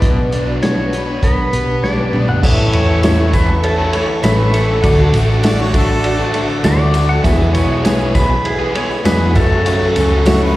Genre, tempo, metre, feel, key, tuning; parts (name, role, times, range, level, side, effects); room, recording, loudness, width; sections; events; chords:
folk rock and heartland rock; 100 BPM; 4/4; straight; A major; A4 = 439 Hz
clean lap steel guitar; melody; 0.0-10.6 s; G#4 to F#5; -20 LUFS; equal; slapback echo, tape echo
picked steel-string acoustic guitar; accompaniment; 0.0-10.6 s; E2 to B4; -22 LUFS; left 3 dB
raw garage guitar; riff; 0.0-10.6 s; E2 to B4; -21 LUFS; equal; overdrive, slapback echo
hollow-body short-scale fingered electric bass; bass; 0.0-10.6 s; A1 to B2; -16 LUFS; equal
vintage drum kit; drums; 0.0-10.4 s; crash cymbal, hi-hat, kick drum, ride cymbal, snare drum, toms; -17 LUFS; equal
bright baby grand piano; accompaniment; 2.4-10.6 s; E4 to E5; -25 LUFS; right 1 dB
bright tonewheel organ; sustained chords; 2.4-10.6 s; G#4 to D6; -28 LUFS; equal
tambourine; percussion; 2.4-10.5 s; -36 LUFS; right 2 dB
warm harmonica; second line; 5.5-6.5, 10.3-10.6 s; F#4 to D5; -25 LUFS; right 1 dB; slapback echo, tape echo
light reverb, small room ambience; live gig heard through the venue's PA, recital hall reverb; -12 LUFS; side -16 dB against mid
0.0-2.4 A section; 2.4-10.6 B section
drum fill 1.8-2.4
0.0 Bm; 1.2 G/B; 2.4 A; 4.8 D; 7.2 E; 9.4 F#m